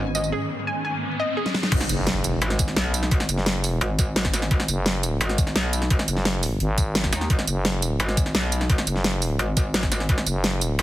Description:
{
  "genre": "dark technical drum and bass",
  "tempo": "172 BPM",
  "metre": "4/4",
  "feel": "straight",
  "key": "G# minor",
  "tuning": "A4 = 440 Hz",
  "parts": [
    { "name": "metallic wobble bass", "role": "bass", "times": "0.0-10.8 s", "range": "G#1 to D#2", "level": "-24 LUFS", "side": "equal", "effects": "chorus, tube saturation" },
    { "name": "riser and impact", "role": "sound effects", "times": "0.1-3.1 s", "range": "none", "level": "-31 LUFS", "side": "equal", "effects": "none" },
    { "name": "analog pluck", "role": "arpeggios", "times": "0.1-1.5 s", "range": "G#4 to G#5", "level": "-28 LUFS", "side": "left 1 dB", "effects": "chorus, sidechain pumping, ping-pong delay" },
    { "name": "dubstep drum kit", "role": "drums", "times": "0.1-10.8 s", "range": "crash cymbal, hi-hat, snare drum, tambourine", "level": "-25 LUFS", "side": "equal", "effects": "none" },
    { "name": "electronic kick drum", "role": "drums", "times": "1.7-10.2 s", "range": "none", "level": "-22 LUFS", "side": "equal", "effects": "none" },
    { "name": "growling FM bass", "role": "bass", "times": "1.9-10.8 s", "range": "F#1 to G#1", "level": "-24 LUFS", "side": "equal", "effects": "none" }
  ],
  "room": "digital ambience",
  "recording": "heavily compressed radio sound, multiband compression",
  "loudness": "-20 LUFS",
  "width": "side -15 dB against mid",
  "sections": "0.0-1.7 A section; 1.7-10.8 B section",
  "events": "filter sweep on drum 0.0-1.7; riser 0.1-1.7; drum fill 1.5; drop 1.7-10.8; impact 1.7-3.1",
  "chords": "0.0 G#m; 1.7 N.C.",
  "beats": "| 0.32 0.67 1.02 1.37 | 1.72 2.07 2.42 2.77 | 3.11 3.46 3.81 4.16 | 4.51 4.86 5.21 5.56 | 5.91 6.25 6.60 6.95 | 7.30 7.65 8.00 8.35 | 8.70 9.04 9.39 9.74 | 10.09 10.44 10.79"
}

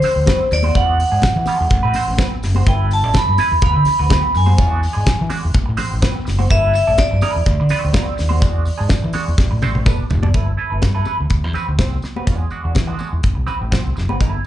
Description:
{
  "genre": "disco",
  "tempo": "125 BPM",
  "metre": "4/4",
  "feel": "straight",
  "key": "A dorian",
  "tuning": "A4 = 440 Hz",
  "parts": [
    { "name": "vibraphone with hard mallets", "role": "melody", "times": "0.0-9.8 s", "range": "C5 to B5", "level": "-19 LUFS", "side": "equal", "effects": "plate reverb, slapback echo" },
    { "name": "semi-hollow electric guitar", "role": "accompaniment", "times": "0.0-14.4 s", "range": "G#3 to D5", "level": "-26 LUFS", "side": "right 4 dB", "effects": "wah, plate reverb, slapback echo" },
    { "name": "damped 70s drum kit", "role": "drums", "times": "0.0-14.3 s", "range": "hi-hat, kick drum, snare drum, toms", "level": "-18 LUFS", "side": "equal", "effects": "none" },
    { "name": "congas", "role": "percussion", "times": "0.0-14.2 s", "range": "none", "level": "-29 LUFS", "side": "left 5 dB", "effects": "slapback echo" },
    { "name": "tambourine", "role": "percussion", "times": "0.0-14.5 s", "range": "none", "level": "-40 LUFS", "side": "left 2 dB", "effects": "none" },
    { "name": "overdriven fingered electric bass", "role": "bass", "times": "0.2-14.4 s", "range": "E1 to E3", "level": "-18 LUFS", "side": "equal", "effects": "none" }
  ],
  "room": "little or no reverb",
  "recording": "live gig heard through the venue's PA, club reverb, nothing above 10.7 kHz",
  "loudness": "-14 LUFS",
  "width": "side -12 dB against mid",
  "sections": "0.0-10.3 A section; 10.3-14.5 B section",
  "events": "drum fill 9.4-10.3",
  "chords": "0.0 D6; 0.8 E9; 1.7 Am69; 2.7 G69; 3.6 D6; 4.6 E9; 5.5 Am69; 6.5 G69; 7.5 D6; 8.4 E9; 9.4 Am69; 9.9 E7sus4; 10.3 G69; 11.3 D13; 12.3 E9; 13.2 Am69",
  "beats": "0.27 | 0.75 1.23 1.71 2.19 | 2.67 3.15 3.63 4.11 | 4.58 5.07 5.54 6.02 | 6.50 6.98 7.46 7.94 | 8.42 8.90 9.38 9.86 | 10.35 10.83 11.31 11.79 | 12.28 12.76 13.24 13.72 | 14.20"
}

